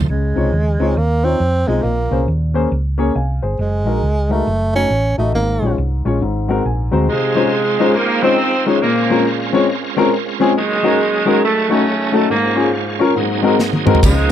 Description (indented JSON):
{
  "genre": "uptempo gospel",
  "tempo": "138 BPM",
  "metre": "4/4",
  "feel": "swing 63% on 8ths",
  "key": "Db major",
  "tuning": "A4 = 441 Hz",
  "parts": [
    { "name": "bright tonewheel organ", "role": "sustained chords", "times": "0.0-0.1, 7.1-14.3 s", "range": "F3 to C5", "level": "-23 LUFS", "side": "right 6 dB", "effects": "fast rotary speaker, overdrive, chorus vibrato" },
    { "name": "hollow-body short-scale fingered electric bass", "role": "bass", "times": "0.0-7.1, 14.0-14.3 s", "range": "Gb1 to F2", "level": "-18 LUFS", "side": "right 1 dB", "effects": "none" },
    { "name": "modern studio drum kit", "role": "drums", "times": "0.0-0.1, 13.6-14.2 s", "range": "kick drum, ride cymbal, snare drum, toms", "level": "-15 LUFS", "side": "right 1 dB", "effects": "none" },
    { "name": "breathy tenor saxophone", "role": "melody", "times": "0.1-5.8 s", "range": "Ab3 to Db4", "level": "-19 LUFS", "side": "right 2 dB", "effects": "none" },
    { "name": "warm upright piano", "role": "accompaniment", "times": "0.1-14.3 s", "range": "Ab2 to Bb5", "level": "-17 LUFS", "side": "left 4 dB", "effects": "none" },
    { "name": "clear saxophone section", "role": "melody", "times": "7.1-14.3 s", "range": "C3 to Db4", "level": "-18 LUFS", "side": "right 2 dB", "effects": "tape echo" },
    { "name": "tambourine", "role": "percussion", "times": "14.0-14.3 s", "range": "none", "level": "-32 LUFS", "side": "left 9 dB", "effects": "none" }
  ],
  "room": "light reverb",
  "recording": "dry, close 1970s-style studio recording",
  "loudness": "-14 LUFS",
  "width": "side -10 dB against mid",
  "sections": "0.1-7.1 A section; 7.1-14.3 B section",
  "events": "upright piano fill 6.2-7.1; drum fill 13.6-14.0",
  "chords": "0.1 Dbmaj9; 1.8 Bbm9; 3.6 Gb69; 4.5 Gbm6; 5.3 Db/Ab; 6.2 Ab9; 7.1 Dbmaj9; 8.8 Bbm9; 10.6 Gb69; 11.4 Gbm6; 12.3 Db/Ab; 13.2 Ab9",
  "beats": "| 0.09 0.53 0.97 1.41 | 1.84 2.28 2.72 3.16 | 3.60 4.03 4.47 4.91 | 5.35 5.78 6.22 6.66 | 7.09 7.53 7.96 8.40 | 8.83 9.27 9.70 10.13 | 10.57 11.00 11.43 11.87 | 12.30 12.73 13.16 13.60 | 14.03"
}